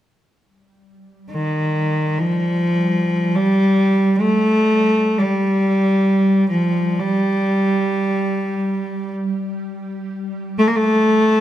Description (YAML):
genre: caucasian folk, Caucasian lament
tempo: free time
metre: none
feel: none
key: unclear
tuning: A4 = 436 Hz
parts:
  - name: ethereal airy pad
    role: drone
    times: 1.3-11.4 s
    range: G3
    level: -27 LUFS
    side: equal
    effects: none
  - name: rich cello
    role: melody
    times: 1.3-11.4 s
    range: Eb3 to Bb3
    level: -16 LUFS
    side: equal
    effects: none
room: wet recital hall reverb, RT60 1.4 s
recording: none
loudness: -16 LUFS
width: side -12 dB against mid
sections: 0.4-11.4 A section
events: none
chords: none